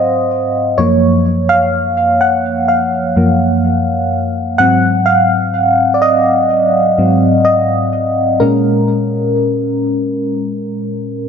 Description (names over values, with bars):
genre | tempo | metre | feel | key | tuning
R&B | 63 BPM | 4/4 | straight | unclear | A4 = 439 Hz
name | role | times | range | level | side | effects
mellow FM electric piano | solo | 0.0-11.3 s | Gb2 to Gb5 | -11 LUFS | equal | chorus, tremolo, tape echo
room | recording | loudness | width
light reverb | dark, warm production | -11 LUFS | side -7 dB against mid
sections
0.0-11.3 A section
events
FM electric piano solo 0.0-11.3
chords
0.0 Ab7; 0.8 Gbmaj7; 4.6 Ab7; 8.4 Bbm7